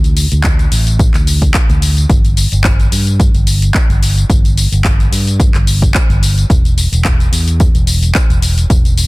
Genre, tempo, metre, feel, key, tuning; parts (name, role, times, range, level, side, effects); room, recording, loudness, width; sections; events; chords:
nu-disco, nu disco; 109 BPM; 4/4; swing 54% on 16ths; A4 = 439 Hz
fingered electric bass with an envelope filter; bass; 0.0-9.1 s; E1 to G2; -13 LUFS; equal; tube saturation
house drum kit; drums; 0.0-9.1 s; handclaps, hi-hat, tambourine; -18 LUFS; left 1 dB
electronic kick drum; drums; 0.4-8.8 s; -12 LUFS; equal
little or no reverb; dense, heavily limited modern master; -9 LUFS; side -22 dB against mid
0.0-9.1 A section